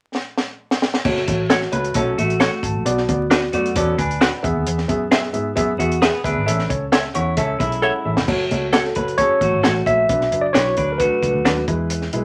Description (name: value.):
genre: uptempo 1960s-style soul.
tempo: 133 BPM.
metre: 4/4.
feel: straight.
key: unclear.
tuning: A4 = 439 Hz.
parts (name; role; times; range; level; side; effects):
compact cocktail drum kit; drums; 0.1-12.2 s; crash cymbal, hi-hat, kick drum, snare drum; -23 LUFS; equal; none.
dark upright piano; accompaniment; 1.1-12.2 s; F#3 to C#6; -25 LUFS; equal; none.
vintage muted fingered electric bass; bass; 1.1-12.2 s; F#1 to G#2; -27 LUFS; equal; none.
direct-recorded clean electric guitar; stabs; 1.5-11.6 s; D4 to F#5; -23 LUFS; equal; none.
semi-hollow electric guitar; riff; 1.7-11.6 s; G#3 to C#5; -27 LUFS; equal; none.
tine electric piano; melody; 8.7-11.6 s; A4 to E5; -21 LUFS; equal; none.
room: moderate club reverb, RT60 0.5 s.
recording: vinyl crackle.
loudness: -19 LUFS.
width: mono.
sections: 0.0-1.1 A section; 1.1-8.3 B section; 8.3-12.2 C section.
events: drum fill 0.1-1.1, 7.8-8.3.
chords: 0.0 N.C.; 1.1 F#m; 2.9 Bm; 4.4 E; 6.5 A; 8.3 F#m; 10.1 Bm; 11.7 E.